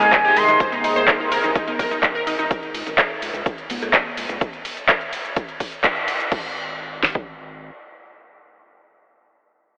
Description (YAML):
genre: progressive house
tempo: 126 BPM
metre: 4/4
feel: straight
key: unclear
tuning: A4 = 444 Hz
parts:
  - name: expressive synth lead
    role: melody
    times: 0.0-0.6 s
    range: Ab5 to C6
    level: -22 LUFS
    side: equal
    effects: chorus, sidechain pumping, tape echo
  - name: airy dreamy lead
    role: second line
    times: 0.0-0.6 s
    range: none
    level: barely audible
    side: none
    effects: none
  - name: evolving wavetable pad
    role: sustained chords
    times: 0.0-2.5 s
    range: C3 to Bb4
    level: -29 LUFS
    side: equal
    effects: chorus, built-in reverb, vintage 12-bit sampler grit, sidechain pumping
  - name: unison pluck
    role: arpeggios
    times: 0.0-2.5 s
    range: Ab3 to C5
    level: -28 LUFS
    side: equal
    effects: sidechain pumping, tape echo
  - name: saturated sub bass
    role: bass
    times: 0.0-7.7 s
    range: Ab1 to Eb2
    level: -42 LUFS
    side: equal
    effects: sidechain pumping
  - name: pop drum kit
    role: drums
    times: 0.0-6.4 s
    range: crash cymbal, handclaps, hi-hat, ride cymbal, shaker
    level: -24 LUFS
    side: equal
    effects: none
  - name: bongos, cowbell and congas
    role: percussion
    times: 0.0-4.4 s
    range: none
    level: -36 LUFS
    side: equal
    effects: sidechain pumping on perc
  - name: deep house drum kit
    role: drums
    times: 0.1-7.3 s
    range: kick drum, snare drum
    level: -25 LUFS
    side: equal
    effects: overdrive
room: wet cathedral reverb, RT60 5.2 s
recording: dreamy mix soaked in reverb, telephone sound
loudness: -21 LUFS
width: mono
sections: 0.0-6.3 A section; 6.3-9.8 B section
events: drop 0.0-6.3; band accent 5.8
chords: 0.0 Ab; 2.5 Db5; 6.3 N.C.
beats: 0.13 | 0.60 1.08 1.55 2.03 | 2.51 2.98 3.46 3.94 | 4.41 4.89 5.37 5.84 | 6.32 6.79 7.27